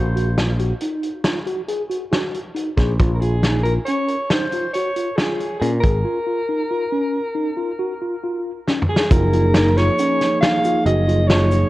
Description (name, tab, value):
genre	progressive instrumental, band music in an uneven meter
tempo	137 BPM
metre	7/4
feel	straight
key	unclear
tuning	A4 = 440 Hz
part	mellow soprano saxophone	melody	0.0-11.7 s	Ab4 to F5	-22 LUFS	equal	analog delay
part	mellow tine electric piano	arpeggios	0.0-11.6 s	Db4 to Ab4	-24 LUFS	equal	medium stereo tremolo, analog delay
part	picked electric bass	bass	0.0-11.6 s	Gb1 to Bb2	-18 LUFS	equal	transformer saturation
part	loose indie drum kit	drums	0.2-11.6 s	hi-hat, kick drum, snare drum, toms	-20 LUFS	equal	none
part	mellow tonewheel organ	accompaniment	9.1-11.7 s	F3 to Ab4	-22 LUFS	right 2 dB	slow rotary speaker
part	egg shaker	percussion	9.1-11.7 s	none	-46 LUFS	left 4 dB	none
room	moderate spring reverb, RT60 2.0 s, small room ambience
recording	worn, warbling old tape, cassette tape, warbly pitch drift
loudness	-17 LUFS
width	side -17 dB against mid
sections	0.0-9.1 A section; 9.1-11.7 B section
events	break 6.0-9.1; drum fill 8.7-9.1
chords	0.0 Ab7sus2/Bb (rootless); 3.0 Db6/Bb; 6.0 Bbm; 9.1 Gbmaj7